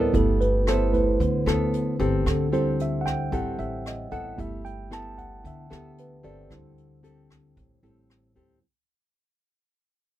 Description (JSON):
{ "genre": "bossa nova", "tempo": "113 BPM", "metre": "4/4", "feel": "straight", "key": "G major", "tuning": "A4 = 440 Hz", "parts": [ { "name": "mellow tine electric piano", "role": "accompaniment", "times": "0.0-8.7 s", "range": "G3 to A5", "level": "-27 LUFS", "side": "right 3 dB", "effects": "none" }, { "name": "nylon-string guitar", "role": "accompaniment", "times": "0.0-8.6 s", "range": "A2 to A4", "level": "-28 LUFS", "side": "left 3 dB", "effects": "none" }, { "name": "upright bass", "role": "bass", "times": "0.0-8.6 s", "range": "G1 to D2", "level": "-29 LUFS", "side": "equal", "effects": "none" }, { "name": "jazz brush drum kit", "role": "drums", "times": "0.1-8.5 s", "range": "hi-hat, kick drum, rim click", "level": "-32 LUFS", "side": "equal", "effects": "none" } ], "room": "light reverb", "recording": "none", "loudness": "-22 LUFS", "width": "side -13 dB against mid", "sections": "0.0-8.6 A section", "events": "fade-out 0.0-8.6; tine electric piano solo 0.0-8.6", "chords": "0.1 G69; 2.3 D7sus4; 4.4 G69; 6.5 D7sus4" }